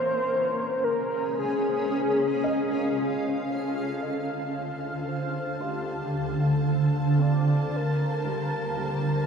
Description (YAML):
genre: ambient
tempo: 57 BPM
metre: 4/4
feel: straight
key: D minor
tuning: A4 = 440 Hz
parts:
  - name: warm velvety synth lead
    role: melody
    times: 0.0-9.3 s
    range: G4 to D5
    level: -30 LUFS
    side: left 1 dB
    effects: chorus, ping-pong delay
  - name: granular cloud pad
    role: sustained chords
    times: 0.0-9.3 s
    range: D3 to A5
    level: -26 LUFS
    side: right 1 dB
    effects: built-in reverb
  - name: felt-muted upright piano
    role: arpeggios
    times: 0.0-9.3 s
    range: G3 to Eb5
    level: -39 LUFS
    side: left 1 dB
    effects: ping-pong delay
  - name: rich studio violin section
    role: texture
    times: 3.5-9.3 s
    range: C5 to A5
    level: -42 LUFS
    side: left 1 dB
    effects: none
room: wet cathedral reverb, RT60 6.3 s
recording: none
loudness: -24 LUFS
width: side -6 dB against mid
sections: 0.0-3.5 A section; 3.5-9.3 B section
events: fade-in on felt piano 3.5-9.3; fade-in on violin section 3.5-9.3; fade-in on soft synth lead 3.5-9.3; filter sweep on ambient pad 3.5-9.3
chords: 0.0 C#maj7; 3.5 Dm7; 7.7 Bbmaj7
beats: 0.34 1.40 2.45 | 3.50 4.55 5.61 6.66 | 7.71 8.77